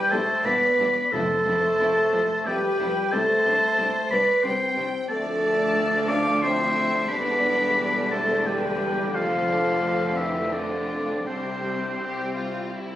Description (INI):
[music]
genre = cinematic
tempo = 89 BPM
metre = 3/4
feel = rubato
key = F lydian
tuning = A4 = 439 Hz
[part]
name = clear oboe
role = second line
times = 0.0-12.7 s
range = C5 to D6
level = -25 LUFS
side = left 1 dB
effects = none
[part]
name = clear symphonic violin section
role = second line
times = 0.0-12.7 s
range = F4 to G5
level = -34 LUFS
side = equal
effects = none
[part]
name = warm clarinet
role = second line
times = 0.0-12.7 s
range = C4 to D5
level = -29 LUFS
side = equal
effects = none
[part]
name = dark French horn section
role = sustained chords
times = 0.0-12.7 s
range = C3 to B4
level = -27 LUFS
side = equal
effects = none
[part]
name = rich symphonic violin section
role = melody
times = 0.1-13.0 s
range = C4 to G4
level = -38 LUFS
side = left 3 dB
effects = none
[part]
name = rich symphonic viola section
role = accompaniment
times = 0.1-13.0 s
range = D3 to D4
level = -32 LUFS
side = equal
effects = none
[part]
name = rich chamber double bass section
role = bass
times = 0.1-13.0 s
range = E1 to D2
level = -38 LUFS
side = right 4 dB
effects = none
[part]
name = rich symphonic cello section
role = bass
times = 0.1-13.0 s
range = C2 to F2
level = -35 LUFS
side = right 2 dB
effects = none
[part]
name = timpani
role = percussion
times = 1.1-2.1 s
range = F2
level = -35 LUFS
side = right 1 dB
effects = none
[sound]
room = moderate scoring stage reverb, RT60 1.6 s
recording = recorded on a phone in the room, club reverb, compression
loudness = -21 LUFS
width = side -12 dB against mid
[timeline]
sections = 0.0-13.0 A section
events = none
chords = 0.0 Em7; 1.1 Fmaj7; 3.1 Csus2; 5.1 Dm; 7.1 Em7; 9.1 F; 11.3 Csus2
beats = 0.46 | 1.13 1.79 2.46 | 3.12 3.78 4.43 | 5.09 5.75 6.42 | 7.09 7.77 8.46 | 9.13 9.81 10.52 | 11.26 11.99 12.72